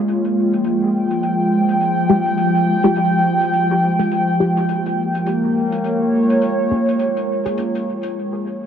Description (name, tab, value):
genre	ambient dub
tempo	104 BPM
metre	4/4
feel	swing 58% on 16ths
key	F minor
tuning	A4 = 436 Hz
part	warbly tape-like pad	sustained chords	0.0-8.2 s	F3 to G5	-16 LUFS	equal	chorus, built-in reverb
part	hi-hat	drums	0.1-8.1 s	none	-42 LUFS	left 4 dB	low-pass filter on hats, low-pass filter on room, dub echo
part	filtered dub chord stab	stabs	2.1-8.6 s	Ab3 to Ab4	-23 LUFS	left 2 dB	phaser, analog chorus, dub echo
room	wet huge ambient reverb, RT60 8.2 s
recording	dreamy mix soaked in reverb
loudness	-15 LUFS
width	side -8 dB against mid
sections	0.0-8.7 A section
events	break 8.2-8.7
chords	0.1 Fmadd9; 4.7 Bbm7